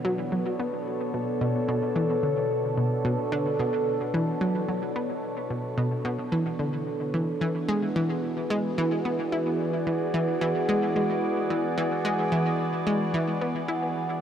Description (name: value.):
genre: ambient, sequencer-driven space music.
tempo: 110 BPM.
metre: 4/4.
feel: straight.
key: B dorian.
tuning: A4 = 441 Hz.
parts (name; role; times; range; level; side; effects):
evolving wavetable pad; sustained chords; 0.0-14.2 s; B2 to D5; -27 LUFS; equal; phaser, built-in reverb, shimmer reverb.
analog pluck; riff; 0.0-13.9 s; B2 to E4; -28 LUFS; equal; chorus, analog delay.
room: wet huge ambient reverb, RT60 7.5 s.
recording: none.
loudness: -24 LUFS.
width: side -9 dB against mid.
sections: 0.0-14.2 A section.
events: none.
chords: 0.0 Bm7; 7.1 E7.